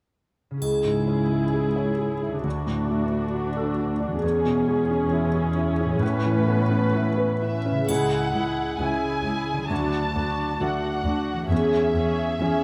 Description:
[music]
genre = cinematic, emotional film score for orchestra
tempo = 66 BPM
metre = 4/4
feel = rubato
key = unclear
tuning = A4 = 443 Hz
[part]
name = concert harp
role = arpeggios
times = 0.5-12.6 s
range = A2 to G#4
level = -31 LUFS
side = equal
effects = none
[part]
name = clear concert grand piano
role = accompaniment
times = 0.6-12.6 s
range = C#2 to C#5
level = -29 LUFS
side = equal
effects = none
[part]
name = muted studio viola section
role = accompaniment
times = 0.6-12.6 s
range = C#4 to B4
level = -31 LUFS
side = equal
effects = none
[part]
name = muted studio cello section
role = bass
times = 0.6-12.5 s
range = C#2 to A2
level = -30 LUFS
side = equal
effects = none
[part]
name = triangle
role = percussion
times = 0.6-2.4, 7.9-9.7 s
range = none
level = -42 LUFS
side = equal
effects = none
[part]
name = muted studio violin section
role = melody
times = 7.4-12.6 s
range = E5 to A5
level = -32 LUFS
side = equal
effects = none
[sound]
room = light reverb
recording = close, detailed microphones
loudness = -24 LUFS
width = mono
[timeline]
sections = 0.6-7.9 A section; 7.9-12.6 B section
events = none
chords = 0.6 C#m; 2.5 D; 4.2 E6; 6.0 Aadd9; 7.9 C#m; 9.7 D; 11.5 E6

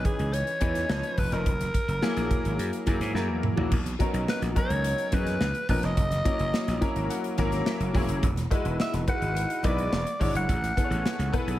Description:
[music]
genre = polished 1980s jazz-funk pop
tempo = 106 BPM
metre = 4/4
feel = straight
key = B major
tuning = A4 = 440 Hz
[part]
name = raspy alto saxophone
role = melody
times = 0.0-11.4 s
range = G#4 to F#5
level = -31 LUFS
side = equal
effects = none
[part]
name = clear baby grand piano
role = accompaniment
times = 0.0-11.6 s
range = E3 to G#5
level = -30 LUFS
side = left 2 dB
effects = analog chorus
[part]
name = gritty slap bass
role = bass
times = 0.0-11.6 s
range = E1 to G#2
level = -29 LUFS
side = equal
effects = overdrive
[part]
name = modern studio drum kit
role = drums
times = 0.0-11.6 s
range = crash cymbal, hi-hat, kick drum, snare drum, toms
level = -29 LUFS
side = equal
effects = gated reverb
[part]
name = congas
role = percussion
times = 0.1-11.6 s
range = none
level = -39 LUFS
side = right 2 dB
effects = none
[sound]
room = small room ambience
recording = none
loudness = -24 LUFS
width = side -14 dB against mid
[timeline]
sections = 0.0-3.7 A section; 3.7-11.6 B section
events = drum fill 3.2-3.7; grand piano fill 6.5-8.2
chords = 0.0 C#m9; 0.9 C#9; 1.5 F#9; 3.7 Bmaj9; 5.4 C#13; 6.0 F#7; 8.2 Emaj9; 9.9 E13; 10.5 Amaj9

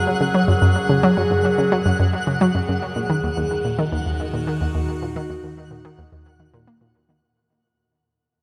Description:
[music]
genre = ambient, sequencer-driven space music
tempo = 109 BPM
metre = 4/4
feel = straight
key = unclear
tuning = A4 = 438 Hz
[part]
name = evolving wavetable pad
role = sustained chords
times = 0.0-7.2 s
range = Eb3 to Bb4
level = -27 LUFS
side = equal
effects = phaser, built-in reverb, shimmer reverb
[part]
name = analog pluck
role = riff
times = 0.0-7.2 s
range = Eb2 to Bb3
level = -22 LUFS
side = equal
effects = chorus, tape echo
[part]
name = twinkling granular texture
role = texture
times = 0.0-7.2 s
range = Gb5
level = -30 LUFS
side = equal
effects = built-in reverb, shimmer reverb
[sound]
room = wet cathedral reverb, RT60 7.5 s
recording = in a vast, echoing space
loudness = -20 LUFS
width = mono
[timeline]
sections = 0.0-7.2 A section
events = fade-out 1.4-7.2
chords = 0.0 Gbadd9; 2.8 Ebm

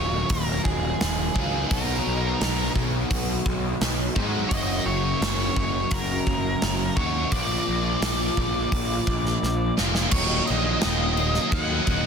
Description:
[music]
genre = rock, shoegaze and dream pop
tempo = 85 BPM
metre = 4/4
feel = straight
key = Eb minor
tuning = A4 = 440 Hz
[part]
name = octave-fuzz lead guitar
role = melody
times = 0.0-12.1 s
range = Ab4 to Gb5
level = -29 LUFS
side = equal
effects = distortion, analog delay
[part]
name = biting overdriven guitar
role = riff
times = 0.0-12.1 s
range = Eb2 to F#4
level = -26 LUFS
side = equal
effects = ensemble chorus
[part]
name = fuzz picked electric bass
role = bass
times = 0.0-12.1 s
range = Eb1 to Ab2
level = -28 LUFS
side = equal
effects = overdrive
[part]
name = gated 80s drum kit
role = drums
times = 0.3-12.0 s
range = crash cymbal, hi-hat, kick drum, snare drum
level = -27 LUFS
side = equal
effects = none
[sound]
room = light reverb, small room ambience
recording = dense, heavily limited modern master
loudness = -21 LUFS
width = side -6 dB against mid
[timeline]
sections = 0.0-10.1 A section; 10.1-12.1 B section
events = drum fill 9.4-10.1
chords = 0.0 Ebm7; 1.7 Bmaj7; 4.5 Gb; 7.3 Bb; 10.1 Ebm

